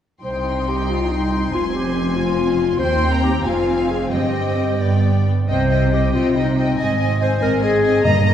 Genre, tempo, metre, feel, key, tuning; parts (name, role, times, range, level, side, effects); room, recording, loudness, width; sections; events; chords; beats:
classical; 87-96 BPM (dotted quarters); 6/8; rubato; C minor; A4 = 441 Hz
warm symphonic violin section; melody; 0.2-8.3 s; G5 to C6; -28 LUFS; left 2 dB
mellow clarinet; second line; 0.2-8.3 s; Eb4 to Eb5; -21 LUFS; left 2 dB
rich symphonic violin section; second line; 0.2-8.3 s; D5 to Ab5; -26 LUFS; left 4 dB
dark symphonic viola section; accompaniment; 0.2-8.3 s; Bb3 to Eb4; -25 LUFS; equal
rich symphonic cello section; bass; 0.2-8.3 s; C2 to C3; -23 LUFS; right 1 dB
warm symphonic double bass section; bass; 0.2-8.3 s; F1 to Eb2; -22 LUFS; right 2 dB
timpani; percussion; 8.0-8.3 s; G2; -19 LUFS; right 1 dB
wet recital hall reverb, RT60 1.4 s; heard from further back in the room; -16 LUFS; side -9 dB against mid
0.2-8.3 A section
0.2 Cm; 1.5 Fm; 2.8 Cm/Eb; 3.5 Fm; 4.1 Cm/G; 4.8 G; 5.5 Cm; 6.8 Ab
| 0.24 0.89 | 1.54 2.16 | 2.79 3.45 | 4.12 4.80 | 5.48 6.14 | 6.79 7.42 | 8.05